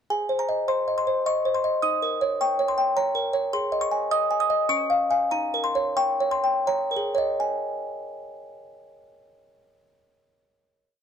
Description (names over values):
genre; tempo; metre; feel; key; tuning
classical, lullaby for music box; 80-106 BPM; 3/4; straight; Ab major; A4 = 441 Hz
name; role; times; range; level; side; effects
music box; solo; 0.1-11.0 s; Db4 to Eb6; -22 LUFS; equal; none
room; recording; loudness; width
wet spring reverb, RT60 1.7 s; dark, warm production; -22 LUFS; side -8 dB against mid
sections
0.1-7.4 A section; 7.4-11.0 final chord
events
slowing down 2.7-7.4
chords
0.1 Ab; 1.8 Eb7; 3.5 Ab5; 4.7 Db; 5.3 Eb7; 7.4 Ab5